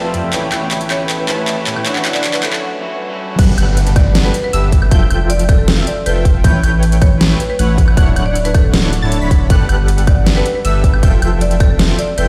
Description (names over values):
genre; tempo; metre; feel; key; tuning
future bass; 157 BPM; 4/4; half-time; G lydian; A4 = 440 Hz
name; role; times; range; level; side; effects
marimba with hard mallets; melody; 0.0-12.2 s; A4 to D5; -26 LUFS; equal; sidechain pumping, low-pass filter, tape echo
electric guitar at the edge of break-up; accompaniment; 0.0-3.4 s; A3 to G4; -28 LUFS; equal; spring reverb, sidechain pumping, dub echo
airy breathy pad; sustained chords; 0.0-12.3 s; D3 to F#5; -33 LUFS; equal; none
soft supersaw; riff; 0.0-12.3 s; D3 to B5; -24 LUFS; equal; sidechain pumping, low-pass filter
saturated sub bass; bass; 0.0-12.3 s; D1 to A2; -18 LUFS; equal; sidechain pumping
riser and downlifter; sound effects; 0.8-6.4 s; none; -30 LUFS; equal; none
dubstep drum kit; drums; 0.1-12.3 s; crash cymbal, handclaps, hi-hat, snare drum, woodblock; -22 LUFS; equal; overdrive, high-pass filter on snare, high-pass filter on hats, high-pass filter on perc, high-pass filter on cymbals, high-pass filter on room
unison pluck; arpeggios; 3.4-12.3 s; E6 to B6; -29 LUFS; equal; sidechain pumping, dub echo
electronic kick drum; drums; 3.4-11.7 s; none; -14 LUFS; equal; overdrive
room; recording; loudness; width
light reverb; played on a big sound system in a bare room, stone room reverb, high-pass filter; -14 LUFS; mono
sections
0.0-3.4 A section; 3.4-12.3 B section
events
build-up 0.0-3.4; drum fill 0.0-2.6; filter sweep on supersaw synth 0.0-3.4; riser 0.8-3.4; break 2.6-3.4; drop 3.4-12.3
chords
0.3 A7; 1.9 Dmaj7; 3.4 Gmaj7; 4.9 Fmaj7; 6.4 A7; 8.0 Dmaj7; 9.5 Gmaj7; 11.0 Fmaj7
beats
| 0.33 0.71 1.09 1.48 | 1.86 2.24 2.62 3.00 | 3.39 3.77 4.15 4.53 | 4.92 5.30 5.68 6.06 | 6.45 6.83 7.21 7.59 | 7.97 8.36 8.74 9.12 | 9.50 9.88 10.27 10.65 | 11.03 11.41 11.79 12.18